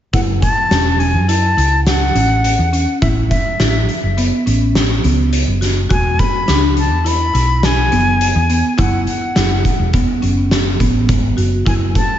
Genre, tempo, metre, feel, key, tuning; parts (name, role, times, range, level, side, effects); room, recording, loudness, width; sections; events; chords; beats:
progressive instrumental, band music in an uneven meter; 104 BPM; 5/4; straight; F# minor; A4 = 441 Hz
bright concert flute; melody; 0.1-12.2 s; E5 to B5; -19 LUFS; left 2 dB; slapback echo, ping-pong delay
buzzing marimba with medium hard mallets; arpeggios; 0.1-12.1 s; B3 to F#4; -20 LUFS; equal; slapback echo, ping-pong delay
hollow-body short-scale fingered electric bass; bass; 0.1-11.9 s; E1 to F#2; -16 LUFS; equal
oversized low-tuned drum kit; drums; 0.1-12.1 s; hi-hat, kick drum, snare drum; -18 LUFS; equal
moderate lush hall reverb, RT60 1.8 s, small room ambience; big arena sound, nothing above 7.7 kHz; -12 LUFS; side -10 dB against mid
0.1-12.2 A section
0.1 F#m7; 3.0 Aadd9; 5.9 Esus2; 8.8 F#7(no3)
| 0.13 0.71 1.29 1.86 2.44 | 3.02 3.60 4.17 4.75 5.33 | 5.90 6.48 7.05 7.63 8.21 | 8.78 9.36 9.93 10.51 11.09 | 11.66